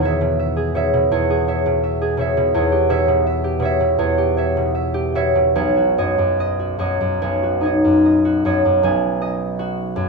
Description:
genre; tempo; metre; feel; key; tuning
classical, solo harp piece; 70-85 BPM; 4/4; rubato; B major; A4 = 440 Hz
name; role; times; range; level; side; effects
concert harp; solo; 0.0-10.1 s; B1 to G#5; -16 LUFS; right 1 dB; none
room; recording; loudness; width
moderate stone room reverb, RT60 1.1 s; small room ambience; -16 LUFS; side -3 dB against mid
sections
0.0-8.8 A section; 8.8-10.1 B section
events
none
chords
0.0 E6; 2.5 Em6; 5.6 Badd9; 8.8 B6

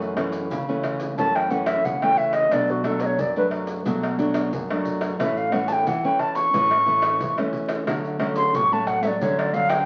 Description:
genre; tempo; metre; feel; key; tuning
samba and choro; 90 BPM; 4/4; straight; D major; A4 = 441 Hz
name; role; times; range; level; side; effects
nylon-string guitar; accompaniment; 0.0-9.9 s; F#2 to D4; -27 LUFS; equal; none
maracas, pandeiro, tamborim and surdo; percussion; 0.0-9.9 s; none; -32 LUFS; equal; none
wooden flute; melody; 1.2-9.9 s; F#4 to C#6; -23 LUFS; equal; none
room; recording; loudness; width
wet studio reverb, RT60 0.9 s; very old 78 rpm record, vinyl crackle; -23 LUFS; mono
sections
0.0-9.9 A section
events
flute solo 0.0-9.9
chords
0.0 F#m7; 2.5 Bm7; 5.2 A; 7.9 Dmaj7

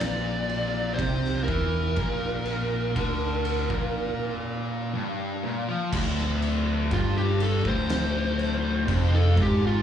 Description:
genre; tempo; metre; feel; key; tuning
stoner and doom metal; 61 BPM; 4/4; straight; D minor; A4 = 440 Hz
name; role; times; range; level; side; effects
fuzz lead guitar; melody; 0.0-9.8 s; F4 to D5; -30 LUFS; right 2 dB; distortion, slapback echo, tape echo
thick fuzz guitar; riff; 0.0-9.8 s; D2 to F3; -28 LUFS; left 1 dB; distortion, slapback echo
overdriven picked electric bass; bass; 0.0-9.8 s; D1 to E2; -27 LUFS; equal; none
oversized low-tuned drum kit; drums; 0.0-9.6 s; crash cymbal, kick drum, ride cymbal, snare drum; -32 LUFS; equal; none
room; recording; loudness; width
little or no reverb; live gig heard through the venue's PA, club reverb, small room ambience; -23 LUFS; side -9 dB against mid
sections
0.0-5.9 A section; 5.9-9.8 B section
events
break 4.0-5.9; lead electric guitar solo 5.9-9.8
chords
0.0 Bb5; 5.9 Dm

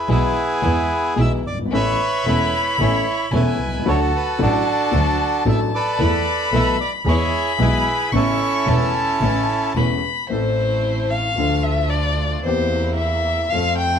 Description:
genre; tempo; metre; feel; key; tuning
tango; 112 BPM; 4/4; rubato; A major, A minor from 10.3 s; A4 = 440 Hz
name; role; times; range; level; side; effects
bandoneon; melody; 0.0-9.7 s; B3 to E5; -21 LUFS; right 2 dB; none
warm grand piano; accompaniment; 0.1-14.0 s; E1 to A4; -24 LUFS; left 4 dB; none
warm chamber string section; stabs; 0.1-14.0 s; F#3 to F4; -29 LUFS; right 1 dB; none
warm double bass; bass; 0.1-14.0 s; E1 to F2; -22 LUFS; right 1 dB; none
warm violin; second line; 1.7-14.0 s; C5 to C#6; -23 LUFS; left 4 dB; none
room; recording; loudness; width
moderate studio reverb, RT60 0.8 s; none; -17 LUFS; side -8 dB against mid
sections
0.0-10.3 A section; 10.3-14.0 B section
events
violin solo 10.3-14.0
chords
0.0 E; 1.7 Aadd9; 3.9 D; 6.0 Esus4; 7.1 E; 8.1 Aadd9; 10.3 Am; 11.4 Dm; 12.5 C7/E

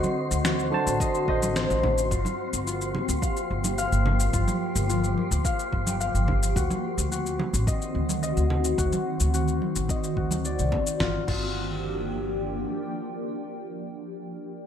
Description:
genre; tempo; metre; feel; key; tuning
sunset chillout; 108 BPM; 4/4; straight; G minor; A4 = 440 Hz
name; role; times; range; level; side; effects
tine electric piano; accompaniment; 0.0-2.1 s; D3 to A5; -28 LUFS; right 1 dB; overdrive, auto-pan, digital delay
shimmering ambient pad; sustained chords; 0.0-14.0 s; Eb3 to G4; -30 LUFS; equal; chorus, built-in reverb, phaser
concert harp; arpeggios; 0.0-13.8 s; F4 to F5; -32 LUFS; left 4 dB; low-pass filter, digital delay
dusty soul sampler-style drum kit; drums; 0.0-11.4 s; crash cymbal, shaker, snare drum; -31 LUFS; left 2 dB; overdrive, gated reverb
congas; percussion; 0.0-10.8 s; none; -33 LUFS; right 2 dB; none
wind-like tuned noise texture; texture; 0.0-11.0 s; C5 to C6; -37 LUFS; equal; built-in reverb
upright bass; bass; 0.3-12.6 s; G1 to D2; -28 LUFS; equal; none
electronic kick drum; drums; 1.0-11.4 s; none; -29 LUFS; equal; none
room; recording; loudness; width
moderate plate reverb, RT60 1.1 s; bright 1980s-style digital production; -23 LUFS; side -9 dB against mid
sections
0.0-11.0 A section; 11.0-13.2 B section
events
filter sweep on harp 0.0-11.0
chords
0.0 D7b9; 2.1 Gm7; 6.6 D7b9; 11.0 Gm7

